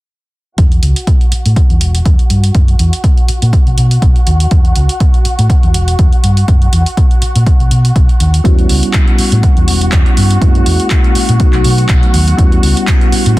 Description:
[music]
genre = filtered disco house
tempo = 122 BPM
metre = 4/4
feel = swing 55% on 16ths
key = E dorian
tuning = A4 = 440 Hz
[part]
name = rich studio violin section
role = sustained chords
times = 0.6-13.4 s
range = F#4 to F#5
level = -22 LUFS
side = equal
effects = sidechain pumping, low-pass filter
[part]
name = hollow-body short-scale fingered electric bass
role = bass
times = 0.6-13.4 s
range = E1 to B2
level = -11 LUFS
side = equal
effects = sidechain pumping, low-pass filter
[part]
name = electronic kick drum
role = drums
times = 0.6-13.4 s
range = none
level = -10 LUFS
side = equal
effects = none
[part]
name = punchy analog drum machine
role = drums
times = 0.6-13.4 s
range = handclaps, hi-hat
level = -20 LUFS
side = right 1 dB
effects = sidechain pumping on hats
[part]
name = bell-like tine electric piano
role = accompaniment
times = 8.4-13.4 s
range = F#3 to F#4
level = -16 LUFS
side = left 1 dB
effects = phaser, sidechain pumping, low-pass filter
[sound]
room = little or no reverb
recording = dense, heavily limited modern master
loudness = -8 LUFS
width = side -18 dB against mid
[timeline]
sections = 0.6-13.4 A section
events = filter sweep 0.6-13.4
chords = 0.6 Esus2; 2.5 N.C.; 3.5 B; 4.5 Esus2; 6.5 N.C.; 7.5 B; 8.4 Em69; 10.4 F#9; 11.4 B7; 12.4 Em69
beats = | 0.58 1.07 1.56 2.06 | 2.55 3.04 3.53 4.02 | 4.51 5.01 5.50 5.99 | 6.48 6.97 7.47 7.96 | 8.45 8.94 9.43 9.93 | 10.42 10.91 11.40 11.89 | 12.38 12.88 13.37

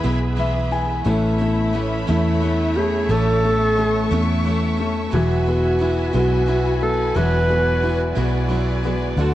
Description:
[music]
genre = six-eight pop ballad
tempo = 59 BPM (dotted quarters)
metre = 6/8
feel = straight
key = E mixolydian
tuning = A4 = 440 Hz
[part]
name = breathy alto saxophone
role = melody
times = 0.0-9.3 s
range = E4 to B4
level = -22 LUFS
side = right 1 dB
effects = slapback echo
[part]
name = warm upright piano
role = accompaniment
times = 0.0-9.3 s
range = D3 to G#5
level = -24 LUFS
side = left 4 dB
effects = none
[part]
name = clear studio string section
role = sustained chords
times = 0.0-9.3 s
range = A3 to C#6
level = -28 LUFS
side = left 1 dB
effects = none
[part]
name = picked steel-string acoustic guitar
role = arpeggios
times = 0.0-9.3 s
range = E2 to F#4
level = -28 LUFS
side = right 6 dB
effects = none
[part]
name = vintage muted fingered electric bass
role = bass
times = 0.0-9.3 s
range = E1 to E2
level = -21 LUFS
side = equal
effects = none
[sound]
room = light reverb, small room ambience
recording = worn, warbling old tape, cassette tape, warbly pitch drift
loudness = -17 LUFS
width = side -14 dB against mid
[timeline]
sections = 0.0-1.1 A section; 1.1-9.3 A section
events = upright piano fill 0.0-1.1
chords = 0.0 E; 1.1 Aadd9; 5.1 Eadd9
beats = 0.05 | 1.06 2.08 | 3.09 4.11 | 5.12 6.13 | 7.15 8.16 | 9.17

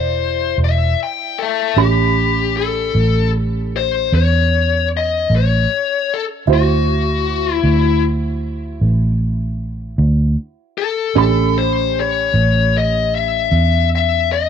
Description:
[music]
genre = slow blues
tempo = 51 BPM (dotted quarters)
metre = 12/8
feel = straight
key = A mixolydian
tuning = A4 = 445 Hz
[part]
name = smooth overdriven lead guitar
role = melody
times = 0.0-14.5 s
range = F#4 to G5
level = -18 LUFS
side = left 10 dB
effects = none
[part]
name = dark upright piano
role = accompaniment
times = 0.0-14.5 s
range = C#4 to B5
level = -23 LUFS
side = right 17 dB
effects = none
[part]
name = vintage muted fingered electric bass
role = bass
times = 0.0-14.5 s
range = E1 to E2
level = -16 LUFS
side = right 1 dB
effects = none
[sound]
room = small room reverb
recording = 1960s-style stereo with parts hard left and right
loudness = -14 LUFS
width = side -8 dB against mid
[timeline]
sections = 0.0-1.8 A section; 1.8-14.5 B section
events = lead electric guitar solo 0.0-1.8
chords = 0.0 Em7; 1.8 A7; 6.5 D7; 11.2 A7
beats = 0.57 | 1.75 2.93 4.11 5.29 | 6.47 7.64 8.82 10.00 | 11.17 12.35 13.52

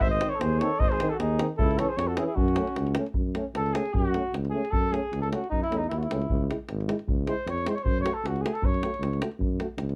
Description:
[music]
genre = balkan folk, Balkan brass band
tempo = 153 BPM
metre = 2/4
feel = swing 54% on 16ths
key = F# dorian sharp4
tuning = A4 = 440 Hz
[part]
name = dark cornet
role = melody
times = 0.0-3.0 s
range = F#4 to E5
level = -32 LUFS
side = equal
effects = none
[part]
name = mellow flugelhorn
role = second line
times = 0.0-9.2 s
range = C#4 to C#5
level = -34 LUFS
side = equal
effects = none
[part]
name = mellow tuba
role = bass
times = 0.0-10.0 s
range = G#1 to F#2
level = -32 LUFS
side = equal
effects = none
[part]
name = davul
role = percussion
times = 0.0-9.9 s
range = none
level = -32 LUFS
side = equal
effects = none
[part]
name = warm French horn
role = accompaniment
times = 0.2-9.7 s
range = B#3 to F#4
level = -38 LUFS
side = equal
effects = none
[part]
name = warm euphonium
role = accompaniment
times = 0.2-9.7 s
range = D#3 to A3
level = -36 LUFS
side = equal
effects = none
[sound]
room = light reverb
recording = dark, warm production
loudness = -27 LUFS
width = mono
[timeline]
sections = 0.0-3.2 A section; 3.2-10.0 B section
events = flugelhorn solo 3.2-10.0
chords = 0.0 G#; 1.6 C#m; 2.4 F#m; 6.3 C#m; 7.9 F#m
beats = | 0.02 0.41 | 0.81 1.20 | 1.59 1.99 | 2.38 2.78 | 3.17 3.56 | 3.96 4.35 | 4.74 5.13 | 5.52 5.91 | 6.30 6.69 | 7.08 7.47 | 7.86 8.24 | 8.63 9.02 | 9.40 9.79

